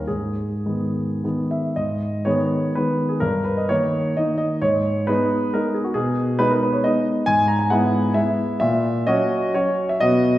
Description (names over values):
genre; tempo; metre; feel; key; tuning
classical, romantic triple-time dance for piano with dotted rhythms; 100-147 BPM; 3/4; rubato; G# minor; A4 = 440 Hz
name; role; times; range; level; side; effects
warm grand piano; solo; 0.0-10.4 s; D#2 to A#5; -18 LUFS; equal; none
room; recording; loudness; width
wet recital hall reverb, RT60 1.7 s; heard from further back in the room; -18 LUFS; side -14 dB against mid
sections
0.0-1.8 A section; 1.8-10.4 A section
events
none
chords
0.1 G#m; 3.2 D#7/G; 4.6 G#m; 6.0 G#m/B; 7.3 E/G#; 8.6 F#7/A#